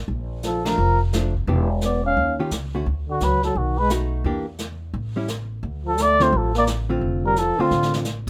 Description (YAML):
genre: jazz, small-group swing and bop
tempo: 173 BPM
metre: 4/4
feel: swing 64% on 8ths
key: D minor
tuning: A4 = 440 Hz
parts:
  - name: upright bass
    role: bass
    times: 0.0-8.3 s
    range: E1 to E2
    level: -27 LUFS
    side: equal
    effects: none
  - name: jazz brush drum kit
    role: drums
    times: 0.1-8.3 s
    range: brushed snare drum, crash cymbal, hi-hat, kick drum, ride cymbal, snare drum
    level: -34 LUFS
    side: equal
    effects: none
  - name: breathy trombone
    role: second line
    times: 0.4-7.9 s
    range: D3 to C#4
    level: -28 LUFS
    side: equal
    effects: none
  - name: trumpet with cup mute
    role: melody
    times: 0.5-7.9 s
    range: F4 to F5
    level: -23 LUFS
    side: equal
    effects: none
  - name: hollow-body jazz guitar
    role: accompaniment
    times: 0.7-8.0 s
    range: D3 to G4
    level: -27 LUFS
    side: equal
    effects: none
room: moderate club reverb, RT60 0.6 s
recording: none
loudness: -22 LUFS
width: mono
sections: 0.0-8.3 A section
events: band accent 0.6; drum fill 7.7-8.1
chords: 0.1 Bbmaj7; 1.5 Em7; 2.2 Eb9; 2.9 Bmadd9; 3.6 B7; 4.2 Em7b5; 4.9 A7; 5.6 Dm7